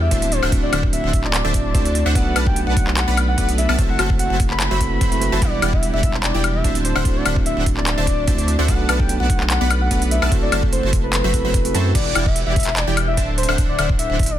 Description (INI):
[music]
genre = future bass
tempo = 147 BPM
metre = 4/4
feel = half-time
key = E minor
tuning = A4 = 440 Hz
[part]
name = soft octave-layered synth lead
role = melody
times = 0.0-14.4 s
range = B4 to B5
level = -25 LUFS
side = left 2 dB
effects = chorus, sidechain pumping, ping-pong delay
[part]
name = mellow tine electric piano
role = accompaniment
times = 0.0-12.0 s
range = G3 to F#5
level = -26 LUFS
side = right 4 dB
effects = sidechain pumping, ping-pong delay
[part]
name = supersaw stab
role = riff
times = 0.0-14.4 s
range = D3 to B5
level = -24 LUFS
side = right 1 dB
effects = sidechain pumping
[part]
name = saturated sub bass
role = bass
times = 0.0-14.4 s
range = D1 to F#2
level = -22 LUFS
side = equal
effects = sidechain pumping
[part]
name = big-room dance drum kit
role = drums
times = 0.1-14.3 s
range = crash cymbal, handclaps, hi-hat, woodblock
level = -24 LUFS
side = left 2 dB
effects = studio ambience
[part]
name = electronic kick drum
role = drums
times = 0.1-14.3 s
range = none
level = -20 LUFS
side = equal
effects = studio ambience
[sound]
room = little or no reverb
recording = dense, heavily limited modern master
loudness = -16 LUFS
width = side -12 dB against mid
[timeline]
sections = 0.0-11.9 A section; 11.9-14.4 A section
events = drop 0.0-11.9, 11.9-14.4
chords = 0.3 D7; 2.2 Bm7; 3.8 F#m7b5; 5.4 Em7; 6.8 D7; 8.7 Bm7; 10.3 F#m7b5; 11.9 Em7; 13.4 D7